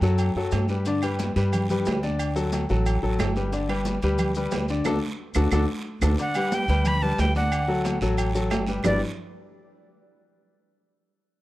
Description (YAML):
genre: latin, salsa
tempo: 180 BPM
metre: 4/4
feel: straight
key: G major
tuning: A4 = 439 Hz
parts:
  - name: clear concert grand piano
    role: accompaniment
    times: 0.0-9.0 s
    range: D3 to D5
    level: -26 LUFS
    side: left 3 dB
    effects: none
  - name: upright bass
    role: bass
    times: 0.0-9.0 s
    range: G1 to G2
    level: -25 LUFS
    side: right 1 dB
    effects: none
  - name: congas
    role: percussion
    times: 0.0-8.9 s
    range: none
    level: -32 LUFS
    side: equal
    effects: none
  - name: guiro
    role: percussion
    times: 0.0-8.9 s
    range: none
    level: -42 LUFS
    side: right 4 dB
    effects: none
  - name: maracas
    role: percussion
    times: 0.0-8.9 s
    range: none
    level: -42 LUFS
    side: left 5 dB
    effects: none
  - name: agogo bells and timbales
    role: percussion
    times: 0.2-8.9 s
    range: none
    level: -33 LUFS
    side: right 4 dB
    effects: none
  - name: claves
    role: percussion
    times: 1.0-8.9 s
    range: none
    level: -36 LUFS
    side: right 8 dB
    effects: none
  - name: breathy bright jazz flute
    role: melody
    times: 6.2-9.0 s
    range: D5 to B5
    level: -27 LUFS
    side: right 1 dB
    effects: none
room: studio reverb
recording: dry, close 1970s-style studio recording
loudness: -22 LUFS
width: side -16 dB against mid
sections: 0.0-6.2 A section; 6.2-8.8 B section; 8.8-10.2 C section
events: band accent 4.9-6.2; drum fill 5.5-6.2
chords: 0.0 D (rootless); 0.9 G; 2.2 D; 3.5 G; 4.9 D; 6.2 G; 7.5 D; 8.8 G6